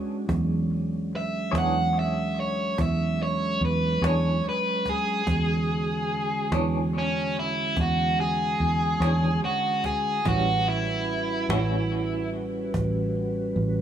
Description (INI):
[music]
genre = slow blues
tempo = 48 BPM (dotted quarters)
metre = 12/8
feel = straight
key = E mixolydian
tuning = A4 = 440 Hz
[part]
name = mellow tonewheel organ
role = sustained chords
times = 0.0-13.8 s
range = D3 to B4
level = -31 LUFS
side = right 1 dB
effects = slow rotary speaker, chorus vibrato
[part]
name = fingered electric bass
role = bass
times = 0.3-13.8 s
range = A1 to E2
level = -26 LUFS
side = right 1 dB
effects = none
[part]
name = cajon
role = drums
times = 0.3-13.7 s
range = none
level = -35 LUFS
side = right 1 dB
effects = none
[part]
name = overdriven electric guitar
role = melody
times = 1.2-12.3 s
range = C#4 to F#5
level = -27 LUFS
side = right 1 dB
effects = tape echo
[part]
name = clean electric guitar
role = accompaniment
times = 1.5-11.8 s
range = A2 to C#5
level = -32 LUFS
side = left 2 dB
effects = tremolo, tape echo
[sound]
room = light reverb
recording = echo-heavy mix, small room ambience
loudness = -23 LUFS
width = side -9 dB against mid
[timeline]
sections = 0.0-13.8 A section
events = overdriven electric guitar solo 0.0-13.8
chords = 0.0 E13; 10.3 A13